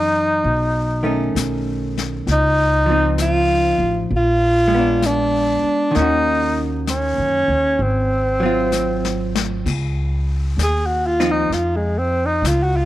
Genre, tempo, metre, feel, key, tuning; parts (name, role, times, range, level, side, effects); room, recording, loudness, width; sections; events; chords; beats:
jazz ballad; 65 BPM; 4/4; swing 66% on 8ths; Db major; A4 = 435 Hz
breathy alto saxophone; melody; 0.0-12.9 s; Ab3 to Ab4; -18 LUFS; equal
archtop guitar, miked and amplified; accompaniment; 0.0-11.5 s; Eb3 to Gb4; -23 LUFS; equal
upright bass; bass; 0.0-12.9 s; Ab1 to Gb2; -21 LUFS; equal
jazz brush drum kit; drums; 0.4-12.9 s; brushed snare drum, hi-hat, kick drum, ride cymbal, snare drum; -29 LUFS; left 7 dB
light reverb, studio reverb; 1960s-style stereo; -16 LUFS; side -15 dB against mid
0.0-9.7 A section; 9.7-12.9 B section
drum fill 8.7-9.7; alto saxophone solo 9.7-12.9
0.4 Cb9; 2.3 Dbmaj9; 4.1 Bb7b9; 5.9 Ebm7; 7.8 Ab6; 9.7 Dbadd9
0.44 1.35 | 2.26 3.18 4.10 5.01 | 5.93 6.85 7.78 8.72 | 9.66 10.59 11.52 12.45